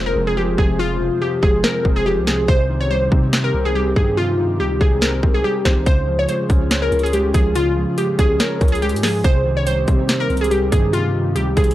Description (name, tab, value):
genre	hip hop, trap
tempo	142 BPM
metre	4/4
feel	half-time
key	C phrygian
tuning	A4 = 441 Hz
part	glassy wavetable pluck	melody	0.0-11.7 s	F4 to Db5	-20 LUFS	equal	chorus
part	mellow electric guitar	accompaniment	0.0-11.7 s	F2 to Db5	-23 LUFS	equal	none
part	airy breathy pad	sustained chords	0.0-11.7 s	C3 to C5	-28 LUFS	equal	chorus
part	long sustained 808-style bass	bass	0.0-11.7 s	F1 to C3	-23 LUFS	equal	none
part	impact	sound effects	0.0-0.8 s	none	barely audible	none	none
part	trap drum kit	drums	0.6-11.7 s	hi-hat, kick drum, snare drum	-17 LUFS	equal	overdrive
room	little or no reverb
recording	dry, gritty hardware recording, lossy compression artefacts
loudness	-15 LUFS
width	side -14 dB against mid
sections	0.0-11.7 A section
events	break 0.0-5.9; impact 0.0-0.8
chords	0.0 Fm; 2.5 Cm; 5.9 Db; 9.2 Cm